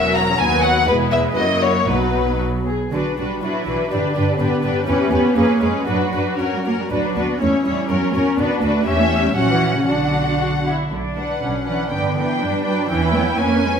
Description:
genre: quick classical-period movement for string orchestra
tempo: 114-126 BPM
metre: 2/4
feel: rubato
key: B minor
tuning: A4 = 440 Hz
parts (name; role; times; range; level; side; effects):
- muted symphonic violin section; melody; 0.0-13.8 s; A#4 to A#5; -22 LUFS; left 3 dB; none
- muted symphonic violin section; second line; 0.0-13.8 s; B3 to B4; -24 LUFS; left 2 dB; none
- muted symphonic viola section; accompaniment; 0.0-13.8 s; F#3 to B4; -23 LUFS; left 1 dB; none
- muted symphonic cello section; bass; 0.0-13.7 s; D#2 to C#4; -22 LUFS; right 3 dB; none
- muted symphonic double bass section; bass; 0.0-13.8 s; E1 to G2; -26 LUFS; right 3 dB; none
room: wet recital hall reverb, RT60 1.4 s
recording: minimal, uncompressed stereo recording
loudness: -16 LUFS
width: side -7 dB against mid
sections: 0.0-2.9 A section; 2.9-10.9 B section; 10.9-13.8 B section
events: none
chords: 0.4 B/D#; 0.9 E; 1.4 F#7; 1.9 B; 2.9 Bm; 3.9 G; 4.9 C#m7b5/E; 5.4 C#7; 5.9 Bm/F#; 6.4 F#; 6.9 Bm/D; 7.4 C#dim/E; 7.9 F#7/E; 8.4 Bm; 8.9 C#dim/E; 9.4 F#7/A#; 9.9 Bm; 11.9 G; 12.9 C#m7b5/E

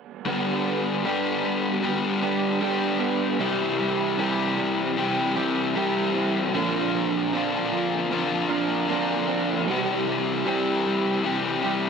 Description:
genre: rock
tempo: 76 BPM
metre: 4/4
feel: straight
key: G major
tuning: A4 = 440 Hz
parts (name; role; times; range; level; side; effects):
- direct-recorded clean electric guitar; arpeggios; 0.3-11.9 s; F3 to Bb4; -34 LUFS; right 10 dB; ensemble chorus, slapback echo
- electric guitar through a small old amp; riff; 0.3-11.9 s; G2 to E4; -28 LUFS; right 12 dB; reverse reverb
- raw garage guitar; riff; 0.3-11.9 s; G2 to G4; -24 LUFS; left 4 dB; overdrive, wide subtle chorus
room: moderate plate reverb, RT60 2.8 s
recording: none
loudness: -22 LUFS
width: side -6 dB against mid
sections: 0.3-11.9 A section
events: none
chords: 0.3 G; 3.4 C; 6.5 Bbadd9; 9.7 C

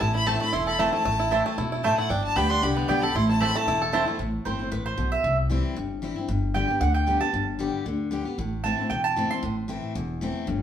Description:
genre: bluegrass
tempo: 229 BPM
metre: 4/4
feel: swing 54% on 8ths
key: A minor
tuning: A4 = 440 Hz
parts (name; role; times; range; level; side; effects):
- clear fiddle; melody; 0.0-3.9 s; D5 to C6; -27 LUFS; left 2 dB; none
- picked steel-string acoustic guitar; accompaniment; 0.0-10.6 s; E2 to G4; -29 LUFS; left 3 dB; none
- bluegrass banjo; arpeggios; 0.0-4.2 s; A3 to A4; -28 LUFS; right 3 dB; none
- upright bass; bass; 0.0-10.6 s; E1 to D2; -28 LUFS; equal; none
- mandolin; stabs; 0.3-9.5 s; A3 to C6; -27 LUFS; right 4 dB; none
room: wet large studio reverb, RT60 0.8 s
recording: band playing live in one room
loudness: -23 LUFS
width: side -9 dB against mid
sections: 0.0-4.2 A section; 4.2-10.6 A section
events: fiddle solo 0.0-4.2; mandolin solo 4.2-10.6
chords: 0.0 Am; 2.1 G; 3.1 Am; 5.2 C; 6.3 G; 8.4 Am

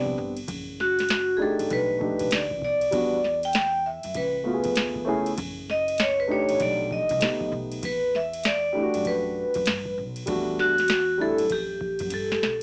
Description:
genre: hip hop, jazz-hop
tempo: 98 BPM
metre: 4/4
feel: swing 63% on 16ths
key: E dorian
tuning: A4 = 440 Hz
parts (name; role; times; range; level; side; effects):
- vibraphone with medium hard mallets; melody; 0.0-12.6 s; F#4 to G5; -24 LUFS; equal; none
- dark concert grand piano; accompaniment; 0.0-11.4 s; G3 to G#4; -27 LUFS; equal; cassette tape
- upright bass; bass; 0.0-12.6 s; F#1 to G2; -37 LUFS; equal; none
- booming analog drum machine; drums; 0.1-12.6 s; hi-hat, kick drum, ride cymbal, snare drum; -30 LUFS; equal; cassette tape
room: light reverb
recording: home recording on cassette, small speaker sound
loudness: -22 LUFS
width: side -36 dB against mid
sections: 0.0-12.6 A section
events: drum fill 12.1-12.6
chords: 0.5 F#m6; 1.7 B7alt; 2.9 Em9; 4.2 C#7b13; 5.4 F#m; 6.6 B7alt; 7.8 Em11

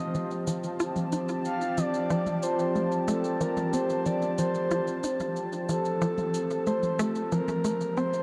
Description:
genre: ambient, sequencer-driven space music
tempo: 92 BPM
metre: 4/4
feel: straight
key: unclear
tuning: A4 = 441 Hz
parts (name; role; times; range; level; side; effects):
- breathy flute-like synth lead; melody; 0.0-8.2 s; A4 to F5; -33 LUFS; equal; chorus, tape echo
- sweeping resonant pad; sustained chords; 0.0-8.2 s; F3 to A5; -33 LUFS; equal; chorus, phaser
- tight sequencer bass; riff; 0.1-8.1 s; F3 to F4; -34 LUFS; equal; tape echo
- electronic shaker and toms; percussion; 0.1-8.2 s; none; -39 LUFS; equal; tape echo
room: wet huge ambient reverb, RT60 8.3 s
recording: dark, warm production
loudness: -28 LUFS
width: mono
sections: 0.0-8.2 A section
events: none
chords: 0.0 F

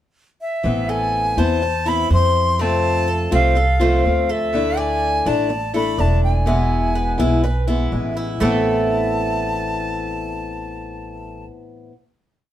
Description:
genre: latin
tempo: 124 BPM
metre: 4/4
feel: straight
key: A harmonic minor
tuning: A4 = 439 Hz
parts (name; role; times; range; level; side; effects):
- bright reedy jazz flute; melody; 0.4-11.5 s; E5 to C6; -22 LUFS; equal; none
- picked acoustic archtop guitar; accompaniment; 0.6-11.9 s; A2 to F4; -23 LUFS; left 3 dB; none
- upright bass; bass; 0.6-11.4 s; E1 to F2; -21 LUFS; right 1 dB; none
- Cuban tres; arpeggios; 0.9-11.4 s; A3 to D5; -24 LUFS; equal; none
room: moderate studio reverb, RT60 0.5 s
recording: band playing live in one room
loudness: -16 LUFS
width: side -12 dB against mid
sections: 0.0-0.6 pickup bar; 0.6-8.4 verse; 8.4-12.3 final chord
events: none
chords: 0.0 N.C.; 0.6 Amadd9; 2.6 F; 4.5 Dsus2; 6.5 E; 8.4 Amadd9

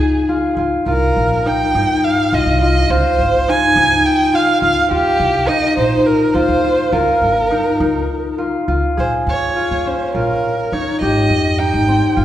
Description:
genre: contemporary instrumental, chamber music in an uneven meter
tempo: 207 BPM (eighths)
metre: 7/8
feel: straight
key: Bb dorian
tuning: A4 = 441 Hz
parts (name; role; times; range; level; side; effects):
- dark violin; melody; 0.0-12.2 s; G4 to Ab5; -17 LUFS; right 2 dB; none
- concert harp; arpeggios; 0.0-12.2 s; C4 to Ab4; -16 LUFS; left 1 dB; none
- upright bass; bass; 0.6-12.2 s; G1 to G2; -20 LUFS; equal; none
room: wet recital hall reverb, RT60 1.8 s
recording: heard from further back in the room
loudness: -13 LUFS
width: side -12 dB against mid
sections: 0.0-9.0 A section; 9.0-12.2 B section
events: none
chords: 0.0 Dbadd9; 0.9 Cm; 2.9 Dbmaj9#11/G; 4.9 Ebadd9; 6.9 Bbm; 9.0 Bbm7; 11.0 Abmaj7

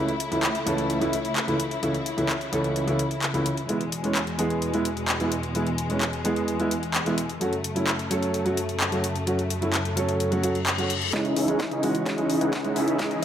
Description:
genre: EDM, festival progressive house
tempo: 129 BPM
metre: 4/4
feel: straight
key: C# minor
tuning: A4 = 440 Hz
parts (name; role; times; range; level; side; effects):
- warm grand piano; accompaniment; 0.0-13.1 s; C#2 to A4; -26 LUFS; right 1 dB; sidechain pumping, digital delay
- rich symphonic string section; sustained chords; 0.0-13.2 s; E2 to E4; -30 LUFS; left 1 dB; sidechain pumping, low-pass filter
- house drum kit; drums; 0.1-13.2 s; handclaps, hi-hat, snare drum; -29 LUFS; left 1 dB; overdrive, high-pass filter on hats, high-pass filter on toms, high-pass filter on snare
- reverse cymbal and riser; sound effects; 10.5-13.2 s; none; -33 LUFS; left 7 dB; none
- supersaw chords; riff; 11.1-13.2 s; C#4 to F#5; -24 LUFS; equal; sidechain pumping, low-pass filter, digital delay
- fat analog bass; bass; 11.1-13.2 s; C#2; -34 LUFS; equal; sidechain pumping, high-pass filter
- electronic kick drum; drums; 11.1-13.1 s; none; -31 LUFS; equal; overdrive, high-pass filter on kick
room: moderate lush hall reverb, RT60 1.7 s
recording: none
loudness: -23 LUFS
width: side -10 dB against mid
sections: 0.0-11.1 A section; 11.1-13.2 B section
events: reverse cymbal 10.5-11.1; build-up 11.1-13.2; drum fill 11.1-13.2; riser 11.1-13.2; filter sweep on supersaw synth 11.1-13.2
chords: 0.0 A/C#; 3.7 E; 7.4 F#m; 11.1 C#madd9

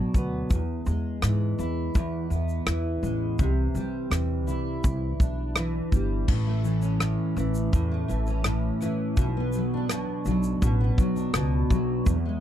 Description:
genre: acoustic pop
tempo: 83 BPM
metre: 4/4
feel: straight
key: A major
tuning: A4 = 440 Hz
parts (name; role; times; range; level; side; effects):
- fingerpicked steel-string acoustic guitar; accompaniment; 0.0-12.4 s; E2 to F#4; -27 LUFS; equal; double-tracked left and right
- upright bass; bass; 0.1-12.4 s; G1 to E3; -27 LUFS; equal; none
- natural country drum kit; drums; 0.1-12.2 s; crash cymbal, kick drum, rim click, shaker; -24 LUFS; equal; none
room: little or no reverb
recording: dry, close 1970s-style studio recording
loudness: -24 LUFS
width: side -11 dB against mid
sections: 0.0-6.3 A section; 6.3-12.4 B section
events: none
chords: 0.0 Bm; 0.5 E; 3.4 Cadd9; 6.3 A; 9.2 Bm

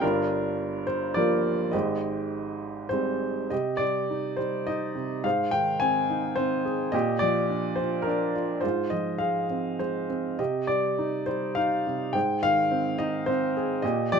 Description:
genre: classical, lyrical solo piano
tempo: 105 BPM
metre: 3/4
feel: rubato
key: Ab lydian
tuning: A4 = 440 Hz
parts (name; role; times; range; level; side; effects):
- warm upright piano; solo; 0.0-14.2 s; G1 to Ab5; -24 LUFS; equal; none
room: light reverb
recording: none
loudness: -24 LUFS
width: side -6 dB against mid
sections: 0.0-3.5 A section; 3.5-14.2 B section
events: none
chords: 0.0 Gm7; 1.7 Abmaj7; 3.5 Cm; 5.2 Ab; 6.9 Bb6; 8.6 Fm/Ab; 10.4 Cm; 12.1 Ab

